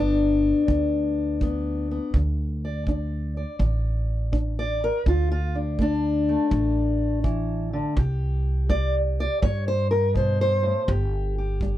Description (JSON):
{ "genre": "acoustic country blues, solo or duo", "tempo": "82 BPM", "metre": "4/4", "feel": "swing 67% on 8ths", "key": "unclear", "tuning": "A4 = 441 Hz", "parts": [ { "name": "fingerpicked steel-string acoustic guitar", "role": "melody", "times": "0.0-11.8 s", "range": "G2 to D5", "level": "-24 LUFS", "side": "left 2 dB", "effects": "none" }, { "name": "upright bass", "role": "bass", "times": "0.0-11.8 s", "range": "G1 to G2", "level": "-25 LUFS", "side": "equal", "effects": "none" }, { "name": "kick drum", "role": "drums", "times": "0.7-11.8 s", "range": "none", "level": "-26 LUFS", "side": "right 1 dB", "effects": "none" } ], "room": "little or no reverb", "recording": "dry, close 1970s-style studio recording", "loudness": "-21 LUFS", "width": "side -13 dB against mid", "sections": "0.0-11.8 A section", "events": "steel-string acoustic guitar solo 0.0-11.8", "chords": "0.0 G; 2.1 D5; 8.0 C5; 10.9 G5" }